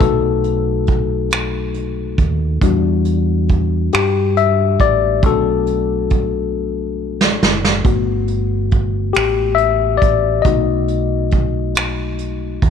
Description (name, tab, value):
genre	slow six-eight R&B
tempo	46 BPM (dotted quarters)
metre	6/8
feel	straight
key	unclear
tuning	A4 = 440 Hz
part	tine electric piano	accompaniment	0.0-12.7 s	G3 to E5	-18 LUFS	left 12 dB	overdrive
part	deep dub fingered electric bass	bass	0.0-12.7 s	F#1 to G2	-20 LUFS	right 2 dB	none
part	soft brush drum kit	drums	0.0-12.7 s	finger snaps, hi-hat, kick drum, snare drum	-17 LUFS	right 2 dB	none
room	small room ambience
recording	1960s-style stereo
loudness	-14 LUFS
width	side -7 dB against mid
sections	0.0-12.7 A section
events	tine electric piano solo 0.0-12.7; drum fill 6.5-7.8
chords	0.0 B7; 2.6 Em7; 5.2 Bm7; 7.8 Gmaj9; 10.4 B7